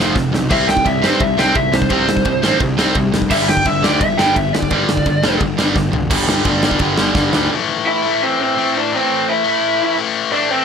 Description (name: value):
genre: punk rock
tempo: 171 BPM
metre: 4/4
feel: straight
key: A minor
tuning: A4 = 441 Hz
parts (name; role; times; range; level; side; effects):
- cranked stack guitar; riff; 0.0-7.5 s; F2 to C4; -20 LUFS; right 9 dB; overdrive
- distorted electric guitar; riff; 0.0-10.6 s; F2 to C4; -19 LUFS; left 9 dB; distortion
- fuzz picked electric bass; bass; 0.0-7.5 s; F1 to G2; -22 LUFS; equal; overdrive
- big rock drum kit; drums; 0.0-7.4 s; crash cymbal, kick drum, ride cymbal, snare drum, toms; -19 LUFS; equal; none
- lead guitar through a small cranked amp; melody; 0.5-5.4, 7.9-10.6 s; C4 to G5; -17 LUFS; right 1 dB; overdrive
room: light reverb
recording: none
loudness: -13 LUFS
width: side -7 dB against mid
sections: 0.0-6.1 A section; 6.1-7.5 B section; 7.5-10.6 C section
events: lead electric guitar solo 0.0-6.1; drum fill 0.2-0.5, 5.8-6.1, 7.2-7.5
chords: 0.0 F5; 0.5 C5; 3.3 G5; 7.5 Am